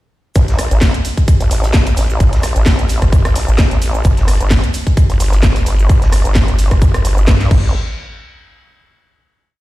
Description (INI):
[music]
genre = bass house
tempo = 130 BPM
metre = 4/4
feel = swing 55% on 16ths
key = unclear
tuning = A4 = 440 Hz
[part]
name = vowel-sweep wobble bass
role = bass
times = 0.4-7.7 s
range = G1 to G2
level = -13 LUFS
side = equal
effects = chorus, overdrive, sidechain pumping
[part]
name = electronic kick drum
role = drums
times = 0.4-7.6 s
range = none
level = -11 LUFS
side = equal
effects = none
[part]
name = garage drum kit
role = drums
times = 0.4-7.6 s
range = crash cymbal, hi-hat, rim click, shaker, snare drum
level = -20 LUFS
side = equal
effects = none
[part]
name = vintage drum kit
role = drums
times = 0.4-7.4 s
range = hi-hat, shaker, snare drum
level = -33 LUFS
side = equal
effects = none
[sound]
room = little or no reverb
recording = played on a big sound system in a bare room, stone room reverb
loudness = -11 LUFS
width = side -17 dB against mid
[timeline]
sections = 0.4-7.7 drop; 7.7-9.6 final hit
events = drop 0.4-7.7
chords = none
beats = | 0.36 0.82 1.28 1.74 | 2.20 2.66 3.12 3.59 | 4.05 4.51 4.97 5.43 | 5.89 6.36 6.82 7.28